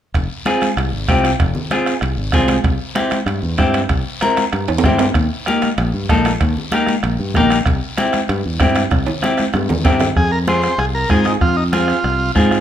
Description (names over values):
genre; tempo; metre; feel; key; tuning
latin, cumbia; 192 BPM; 4/4; straight; F harmonic minor; A4 = 439 Hz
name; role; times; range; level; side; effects
modern bright fingered electric bass; bass; 0.1-12.6 s; F1 to Ab2; -20 LUFS; equal; none
bombo; percussion; 0.1-12.6 s; none; -20 LUFS; right 1 dB; none
guiro; percussion; 0.1-12.6 s; none; -31 LUFS; left 5 dB; none
congas; percussion; 0.2-12.6 s; none; -25 LUFS; left 3 dB; none
timbales; percussion; 0.2-10.1 s; none; -25 LUFS; right 5 dB; none
clean electric guitar; accompaniment; 0.5-12.6 s; Bb3 to Bb4; -18 LUFS; left 1 dB; none
overdriven combo organ; melody; 10.2-12.3 s; Eb4 to C5; -19 LUFS; right 1 dB; none
room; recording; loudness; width
moderate large studio reverb, RT60 1.1 s; minimal, uncompressed stereo recording; -14 LUFS; side -10 dB against mid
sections
0.1-10.2 A section; 10.2-12.6 B section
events
drum fill 4.7-5.2, 8.9-10.2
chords
0.1 Fm; 2.7 C; 5.2 Eb; 7.7 C; 10.2 Fm